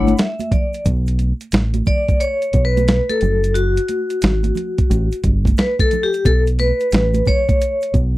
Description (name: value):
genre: hip hop, jazz-hop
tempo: 89 BPM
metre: 4/4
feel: swing 65% on 16ths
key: unclear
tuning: A4 = 440 Hz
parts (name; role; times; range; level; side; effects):
- vibraphone with hard mallets; accompaniment; 0.0-7.9 s; A3 to F#5; -19 LUFS; left 2 dB; none
- deep dub fingered electric bass; bass; 0.0-8.2 s; F#1 to B1; -17 LUFS; equal; none
- dusty soul sampler-style drum kit; drums; 0.1-8.1 s; hi-hat, kick drum, snare drum; -17 LUFS; equal; overdrive
- congas and egg shaker; percussion; 0.1-8.1 s; none; -28 LUFS; right 7 dB; none
room: little or no reverb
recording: dry, close 1970s-style studio recording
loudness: -15 LUFS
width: side -17 dB against mid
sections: 0.9-8.2 A section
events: vibraphone fill 0.0-0.9; vibraphone solo 0.9-8.2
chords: 0.0 Bm11; 0.9 Aadd9; 3.2 F#sus2; 4.9 Gsus2; 6.3 Bsus2